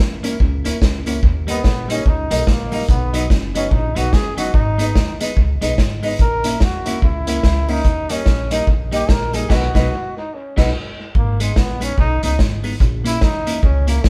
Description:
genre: ska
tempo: 145 BPM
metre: 4/4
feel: swing 61% on 8ths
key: G# minor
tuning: A4 = 441 Hz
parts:
  - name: upright bass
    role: bass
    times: 0.0-14.1 s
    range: F#1 to E2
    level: -24 LUFS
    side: equal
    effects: none
  - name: clean electric guitar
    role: accompaniment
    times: 0.2-14.0 s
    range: F#3 to E4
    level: -30 LUFS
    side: equal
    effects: none
  - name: dark upright piano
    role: stabs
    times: 0.2-10.7 s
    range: C#4 to E5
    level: -28 LUFS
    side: equal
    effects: none
  - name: vintage drum kit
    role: drums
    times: 0.2-14.1 s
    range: crash cymbal, hi-hat, kick drum, snare drum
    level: -20 LUFS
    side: equal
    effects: none
  - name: tambourine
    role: percussion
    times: 0.2-14.0 s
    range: none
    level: -47 LUFS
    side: equal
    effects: none
  - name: brilliant trombone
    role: melody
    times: 1.5-14.1 s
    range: G#3 to A#4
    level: -26 LUFS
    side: equal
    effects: none
room: moderate stone room reverb, RT60 1.1 s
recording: band playing live in one room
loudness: -18 LUFS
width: mono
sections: 0.0-11.2 A section; 11.2-14.1 A section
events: trombone solo 0.0-11.2, 11.2-14.1; band accent 9.5-11.2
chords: 0.0 A#dim; 1.2 D#; 2.9 B; 4.5 G#m; 6.2 A#dim; 7.8 D#; 9.5 B; 11.2 G#m; 12.8 A#dim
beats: 0.41 0.82 | 1.23 1.65 2.06 2.47 | 2.89 3.30 3.72 4.13 | 4.54 4.96 5.37 5.78 | 6.20 6.61 7.02 7.44 | 7.85 8.26 8.67 9.09 | 9.50 9.91 10.32 10.74 | 11.15 11.56 11.98 12.39 | 12.80 13.21 13.63 14.04

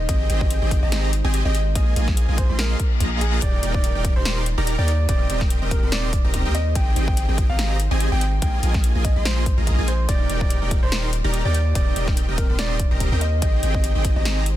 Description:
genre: future bass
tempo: 144 BPM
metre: 4/4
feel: swing 55% on 16ths, half-time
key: Eb major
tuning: A4 = 439 Hz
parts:
  - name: warm concert grand piano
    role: melody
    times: 0.0-14.4 s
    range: Ab4 to G5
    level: -30 LUFS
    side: right 1 dB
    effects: sidechain pumping, ping-pong delay
  - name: ethereal airy pad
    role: sustained chords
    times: 0.0-14.6 s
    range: Ab3 to Eb5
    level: -34 LUFS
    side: equal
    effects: ensemble chorus, built-in reverb, tremolo, sidechain pumping
  - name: long sustained 808-style bass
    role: bass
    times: 0.0-14.6 s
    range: Eb1 to Eb2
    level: -22 LUFS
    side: equal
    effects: sidechain pumping
  - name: dense compressed supersaw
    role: riff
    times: 0.1-14.4 s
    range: Bb3 to C6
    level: -28 LUFS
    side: right 1 dB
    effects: sidechain pumping
  - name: big-room dance drum kit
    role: drums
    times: 0.1-14.6 s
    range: hi-hat, snare drum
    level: -29 LUFS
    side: left 1 dB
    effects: none
  - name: electronic kick drum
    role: drums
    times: 0.1-14.1 s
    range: none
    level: -21 LUFS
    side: equal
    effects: none
  - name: reverse cymbal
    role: sound effects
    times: 2.8-3.4 s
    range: none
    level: -35 LUFS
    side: left 6 dB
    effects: none
room: little or no reverb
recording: dense, heavily limited modern master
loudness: -18 LUFS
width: side -13 dB against mid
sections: 0.0-14.6 A section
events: reverse cymbal 2.8-3.4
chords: 0.1 Abmaj7; 1.8 Bb7sus4; 3.4 Ebmaj7; 5.1 Cm7/Eb; 6.8 Abmaj7; 8.4 Bb7sus4; 10.1 Ebmaj7; 11.8 Cm7/Eb; 13.4 Abmaj7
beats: | 0.09 0.50 0.92 1.34 | 1.75 2.17 2.59 3.00 | 3.42 3.84 4.25 4.67 | 5.09 5.50 5.92 6.34 | 6.75 7.17 7.59 8.00 | 8.42 8.84 9.25 9.67 | 10.09 10.50 10.92 11.34 | 11.75 12.17 12.59 13.00 | 13.42 13.84 14.25

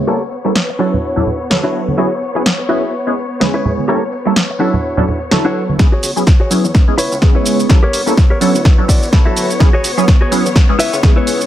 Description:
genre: filtered disco house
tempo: 126 BPM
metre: 4/4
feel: swing 57% on 16ths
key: E mixolydian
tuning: A4 = 440 Hz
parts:
  - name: funky polysynth comp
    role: accompaniment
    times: 0.0-11.5 s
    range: F#3 to C#5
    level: -17 LUFS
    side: right 1 dB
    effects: chorus, phaser, sidechain pumping, low-pass filter
  - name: dark symphonic string section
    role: sustained chords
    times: 0.0-11.5 s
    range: B3 to C#5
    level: -22 LUFS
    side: left 3 dB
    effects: sidechain pumping, low-pass filter
  - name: direct-recorded clean electric guitar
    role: riff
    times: 0.1-11.4 s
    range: D4 to E5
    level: -19 LUFS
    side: left 1 dB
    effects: sidechain pumping, low-pass filter
  - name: tambourine and congas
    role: percussion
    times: 0.1-5.8 s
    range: none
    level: -20 LUFS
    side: right 1 dB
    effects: sidechain pumping on perc, low-pass filter on perc
  - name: punchy analog drum machine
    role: drums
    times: 0.6-11.5 s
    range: hi-hat, shaker, snare drum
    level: -18 LUFS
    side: equal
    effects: small room ambience, sidechain pumping on perc, sidechain pumping on hats
  - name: fingered electric bass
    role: bass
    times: 5.8-11.4 s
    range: G1 to C#3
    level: -29 LUFS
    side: equal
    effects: none
  - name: electronic kick drum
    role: drums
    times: 5.8-11.1 s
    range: none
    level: -10 LUFS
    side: equal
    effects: overdrive, small room ambience
room: light reverb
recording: none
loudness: -11 LUFS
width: side -12 dB against mid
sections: 0.0-5.8 A section; 5.8-11.5 B section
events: filter sweep 0.0-5.8, 5.8-11.5; build-up 5.8-11.5; drum fill 5.8-11.5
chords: 0.1 A7b9; 0.8 Dmaj9; 2.0 E69; 2.9 C#m7; 3.9 A7b9; 4.6 Dmaj9; 5.8 E69; 6.7 C#m7; 7.7 A7b9; 8.4 Dmaj9; 9.6 E69; 10.6 C#m7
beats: | 0.08 0.56 1.03 1.51 | 1.99 2.46 2.94 3.41 | 3.89 4.37 4.84 5.32 | 5.79 6.27 6.75 7.22 | 7.70 8.18 8.65 9.13 | 9.60 10.08 10.56 11.03

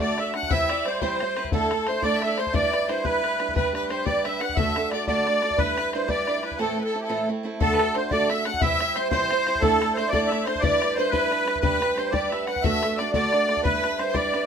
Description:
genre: celtic folk, Celtic jig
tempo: 119 BPM (dotted quarters)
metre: 6/8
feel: straight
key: unclear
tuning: A4 = 439 Hz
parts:
  - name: musette accordion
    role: melody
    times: 0.0-14.5 s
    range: G4 to F#5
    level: -24 LUFS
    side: right 1 dB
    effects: none
  - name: clear fiddle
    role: second line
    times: 0.0-14.5 s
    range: A4 to F#5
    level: -30 LUFS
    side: left 5 dB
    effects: none
  - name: picked old ladder-braced acoustic guitar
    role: accompaniment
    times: 0.0-14.5 s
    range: A2 to C5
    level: -27 LUFS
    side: right 3 dB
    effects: none
  - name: bodhran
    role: percussion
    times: 0.2-14.4 s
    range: none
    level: -29 LUFS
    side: left 4 dB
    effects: none
room: moderate small room reverb, RT60 0.6 s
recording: minimal, uncompressed stereo recording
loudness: -21 LUFS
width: side -7 dB against mid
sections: 0.0-7.6 A section; 7.6-14.5 A section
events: break 6.6-7.6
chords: 0.0 D; 0.5 C; 1.5 Dsus2; 2.5 G6; 3.6 G; 4.6 D; 5.6 G6; 6.6 Am; 7.6 D; 8.6 C; 9.6 Dsus2; 10.6 G6; 11.6 G; 12.6 D; 13.7 G6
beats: 0.00 | 0.50 1.01 | 1.52 2.03 | 2.54 3.05 | 3.55 4.06 | 4.57 5.08 | 5.58 6.09 | 6.59 7.10 | 7.60 8.11 | 8.61 9.12 | 9.62 10.12 | 10.63 11.13 | 11.63 12.14 | 12.64 13.15 | 13.65 14.16

